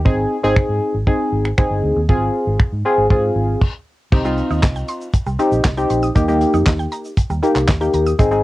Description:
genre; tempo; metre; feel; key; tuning
dance-pop; 118 BPM; 4/4; straight; C minor; A4 = 440 Hz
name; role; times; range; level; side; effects
vintage muted fingered electric bass; bass; 0.0-8.4 s; G1 to Ab2; -21 LUFS; equal; sidechain pumping
deep mellow chord stab; accompaniment; 0.1-8.4 s; Bb3 to Ab4; -17 LUFS; left 1 dB; chorus, sidechain pumping, cassette tape
damped 70s drum kit; drums; 0.1-8.4 s; crash cymbal, finger snaps, handclaps, hi-hat, kick drum, shaker, snare drum; -16 LUFS; equal; cassette tape
mallet-like synth pluck; arpeggios; 4.1-8.4 s; Eb3 to Eb6; -29 LUFS; right 3 dB; chorus, sidechain pumping, cassette tape, analog delay
room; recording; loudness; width
light reverb; home recording on cassette; -15 LUFS; side -17 dB against mid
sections
0.0-4.1 A section; 4.1-8.4 B section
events
stop 3.6-4.1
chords
0.1 Ab; 2.1 Fm/Ab; 4.1 Cm; 6.2 Eb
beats
| 0.06 0.56 1.07 1.58 | 2.09 2.60 3.11 3.61 | 4.12 4.63 5.14 5.65 | 6.16 6.67 7.17 7.68 | 8.19

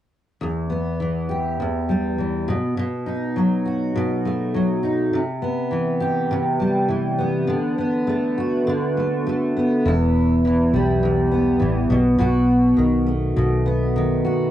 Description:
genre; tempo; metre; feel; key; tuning
pop; 102 BPM; 4/4; straight; E minor; A4 = 440 Hz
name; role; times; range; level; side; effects
fingerpicked steel-string acoustic guitar; accompaniment; 0.4-14.5 s; E2 to G4; -19 LUFS; equal; double-tracked left and right, cassette tape
vintage muted fingered electric bass; bass; 9.9-14.2 s; E1 to B1; -22 LUFS; equal; none
room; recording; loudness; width
wet booth ambience, RT60 0.2 s; home recording on cassette; -18 LUFS; side -12 dB against mid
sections
0.4-9.8 A section; 9.8-14.5 B section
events
none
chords
0.4 Em; 2.5 B7; 5.1 Cmaj7; 7.5 D6; 9.8 Em; 11.9 B7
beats
| 0.42 1.01 1.60 2.19 | 2.78 3.37 3.96 4.54 | 5.13 5.72 6.31 6.90 | 7.49 8.08 8.66 9.25 | 9.84 10.43 11.02 11.60 | 12.19 12.78 13.37 13.95

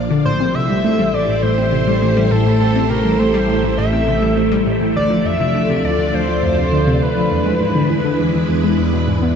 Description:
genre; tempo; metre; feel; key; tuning
ambient, sequencer-driven space music; 102 BPM; 4/4; straight; unclear; A4 = 440 Hz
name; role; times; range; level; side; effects
phased string machine; sustained chords; 0.0-9.4 s; G#3 to D5; -20 LUFS; equal; ensemble chorus, phaser
concert harp; arpeggios; 0.0-9.4 s; E3 to D4; -21 LUFS; left 2 dB; auto-pan, analog delay
analog pluck; riff; 0.0-9.4 s; D2 to C4; -19 LUFS; equal; chorus, analog delay
analog drone; bass; 0.0-9.4 s; A1 to E2; -22 LUFS; equal; chorus
pulse-width lead; melody; 0.3-9.1 s; A4 to E5; -21 LUFS; equal; chorus, analog delay
room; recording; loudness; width
moderate huge ambient reverb, RT60 7.4 s; nothing above 8.0 kHz; -14 LUFS; side -7 dB against mid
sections
0.0-9.4 A section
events
none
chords
0.3 Am7; 5.0 Dm; 7.3 E7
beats
| 0.26 0.84 1.43 2.02 | 2.61 3.20 3.79 4.37 | 4.96 5.55 6.14 6.73 | 7.32 7.90 8.49 9.08

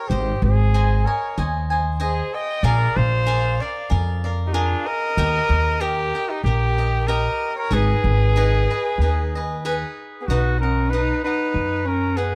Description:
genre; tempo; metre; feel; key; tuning
mexican folk, mariachi; 95 BPM; 4/4; straight; G# harmonic minor; A4 = 437 Hz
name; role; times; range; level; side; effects
bright trumpet; melody; 0.0-12.3 s; D4 to D#5; -26 LUFS; equal; none
rich violin; second line; 0.0-12.3 s; B3 to G5; -31 LUFS; equal; none
cavaquinho; accompaniment; 0.0-12.3 s; D#4 to G#5; -30 LUFS; equal; none
upright bass; bass; 0.1-12.3 s; G#1 to F#2; -23 LUFS; equal; none
room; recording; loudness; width
studio reverb; dry, close 1970s-style studio recording; -21 LUFS; mono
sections
0.0-10.3 A section; 10.3-12.3 B section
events
none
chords
0.1 G#; 2.6 A#7; 5.2 D#; 7.7 G#m; 10.3 B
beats
| 0.09 0.73 1.37 2.01 | 2.64 3.27 3.90 4.54 | 5.17 5.80 6.43 7.07 | 7.70 8.34 8.98 9.63 | 10.27 10.91 11.54 12.18

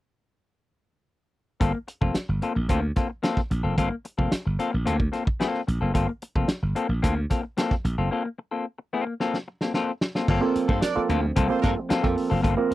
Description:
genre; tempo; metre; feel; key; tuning
funk; 111 BPM; 4/4; straight; G minor; A4 = 440 Hz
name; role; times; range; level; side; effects
semi-hollow electric guitar; accompaniment; 1.6-12.7 s; Bb3 to A4; -27 LUFS; left 4 dB; none
slap bass; bass; 1.6-12.7 s; F1 to G2; -25 LUFS; equal; none
warm soul drum kit; drums; 1.6-12.7 s; crash cymbal, hi-hat, kick drum, snare drum; -26 LUFS; equal; none
dark brass ensemble; sustained chords; 10.3-12.7 s; F3 to C4; -34 LUFS; right 2 dB; none
auto-wah clav; stabs; 10.4-12.7 s; Bb3 to Bb4; -24 LUFS; right 4 dB; overdrive
warm horn section; second line; 10.7-11.7 s; D4 to D5; -29 LUFS; right 5 dB; none
room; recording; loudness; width
light reverb; dry, close 1970s-style studio recording; -23 LUFS; side -16 dB against mid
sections
1.6-10.3 A section; 10.3-12.7 B section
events
break 8.1-10.3; drum fill 9.2-10.3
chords
1.6 Gm11 (rootless); 10.3 Gm11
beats
| 1.61 2.15 2.69 3.24 | 3.78 4.32 4.86 5.41 | 5.95 6.49 7.03 7.57 | 8.11 8.65 9.20 9.74 | 10.28 10.82 11.36 11.90 | 12.44

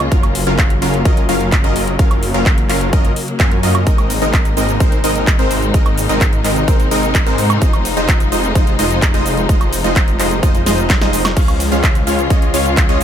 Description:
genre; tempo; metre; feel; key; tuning
EDM, festival progressive house; 128 BPM; 4/4; straight; unclear; A4 = 439 Hz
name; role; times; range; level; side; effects
warm symphonic string section; sustained chords; 0.0-13.0 s; C3 to F4; -22 LUFS; left 3 dB; sidechain pumping
supersaw stab; riff; 0.0-13.0 s; Gb3 to Ab5; -18 LUFS; equal; sidechain pumping, ping-pong delay
wide detuned saw bass; bass; 0.0-13.0 s; F1 to Ab2; -20 LUFS; equal; chorus, sidechain pumping
big-room dance drum kit; drums; 0.0-13.0 s; crash cymbal, handclaps, hi-hat, shaker, snare drum, woodblock; -21 LUFS; right 1 dB; none
electronic kick drum; drums; 0.1-12.9 s; none; -14 LUFS; equal; none
room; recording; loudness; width
digital ambience; none; -12 LUFS; side -9 dB against mid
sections
0.0-13.0 A section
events
drum fill 10.7-11.4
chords
0.1 Gbmaj7; 3.9 Abadd9; 7.6 Fm7; 11.4 Db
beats
| 0.12 0.58 1.05 1.52 | 1.99 2.46 2.93 3.40 | 3.87 4.33 4.80 5.27 | 5.74 6.21 6.68 7.15 | 7.62 8.09 8.55 9.02 | 9.49 9.96 10.43 10.90 | 11.37 11.84 12.30 12.77

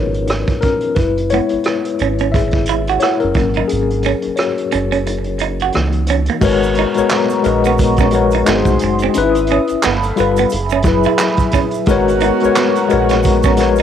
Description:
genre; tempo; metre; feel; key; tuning
R&B, neo-soul; 88 BPM; 4/4; swing 58% on 16ths; unclear; A4 = 441 Hz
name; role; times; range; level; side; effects
tine electric piano; accompaniment; 0.0-13.8 s; E3 to E5; -16 LUFS; left 6 dB; medium tremolo
round analog bass; bass; 0.0-13.8 s; F#1 to C#2; -20 LUFS; right 2 dB; none
vintage brush drum kit; drums; 0.1-13.8 s; crash cymbal, handclaps, hi-hat, kick drum, rim click, snare drum; -20 LUFS; right 2 dB; cassette tape
semi-hollow electric guitar; second line; 1.3-13.8 s; A#3 to F#4; -21 LUFS; right 11 dB; analog delay
hollow soft pad; sustained chords; 6.4-13.8 s; B3 to D#6; -20 LUFS; right 3 dB; chorus
tube shaker and finger snaps; percussion; 6.4-13.8 s; none; -33 LUFS; right 15 dB; none
clear saxophone section; stabs; 11.9-13.5 s; D#3 to F#4; -22 LUFS; right 12 dB; none
room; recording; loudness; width
light reverb; home recording on cassette; -13 LUFS; side -9 dB against mid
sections
0.0-6.4 A section; 6.4-13.8 B section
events
tine electric piano solo 0.0-6.4; kick muted 5.1-6.4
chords
0.0 C#9; 1.0 F#9sus4; 3.3 G#9sus4; 5.7 C#m69; 6.4 G#m11; 8.5 G#7; 9.1 C#m9/G#; 9.8 G9; 10.5 F#9sus4; 11.9 G#m11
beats
0.28 | 0.96 1.64 2.33 3.01 | 3.69 4.37 5.05 5.74 | 6.42 7.10 7.78 8.46 | 9.14 9.83 10.51 11.19 | 11.87 12.55 13.23

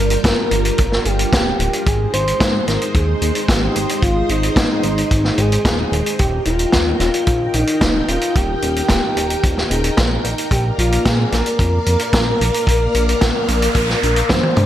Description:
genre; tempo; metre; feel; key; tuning
synthwave; 111 BPM; 4/4; straight; unclear; A4 = 440 Hz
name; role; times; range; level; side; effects
expressive synth lead; melody; 0.0-14.7 s; Eb4 to C5; -20 LUFS; equal; chorus, digital delay
string machine, full ensemble; sustained chords; 0.0-14.7 s; G3 to G5; -24 LUFS; equal; ensemble chorus, sidechain pumping
chorused synth bass; bass; 0.0-14.7 s; D1 to Bb2; -20 LUFS; equal; none
vintage drum kit; drums; 0.1-14.7 s; hi-hat, snare drum, toms; -20 LUFS; equal; gated reverb
kick drum; drums; 0.2-14.4 s; none; -21 LUFS; equal; none
noise sweep; sound effects; 13.1-14.7 s; none; -24 LUFS; right 2 dB; none
room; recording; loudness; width
moderate plate reverb, RT60 1.6 s, small room ambience; bright 1980s-style digital production; -14 LUFS; side -12 dB against mid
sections
0.0-14.7 A section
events
noise sweep 13.1-14.7; drum fill 14.3-14.7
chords
0.0 Gm7; 1.9 Ab; 6.2 Eb; 10.5 Bb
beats
0.24 0.78 1.32 | 1.86 2.41 2.95 3.49 | 4.03 4.57 5.11 5.65 | 6.19 6.73 7.27 7.81 | 8.35 8.89 9.43 9.97 | 10.51 11.05 11.60 12.14 | 12.68 13.22 13.76 14.30

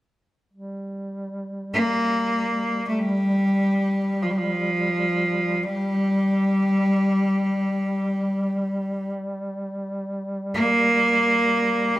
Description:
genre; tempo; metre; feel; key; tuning
caucasian folk, Caucasian lament; free time; none; none; G minor; A4 = 439 Hz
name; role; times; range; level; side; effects
mellow duduk; drone; 0.5-12.0 s; G3; -30 LUFS; equal; none
rich cello; melody; 1.7-12.0 s; F3 to Bb3; -20 LUFS; equal; none
room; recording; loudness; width
light reverb; none; -20 LUFS; side -16 dB against mid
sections
0.5-12.0 A section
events
none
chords
none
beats
free time

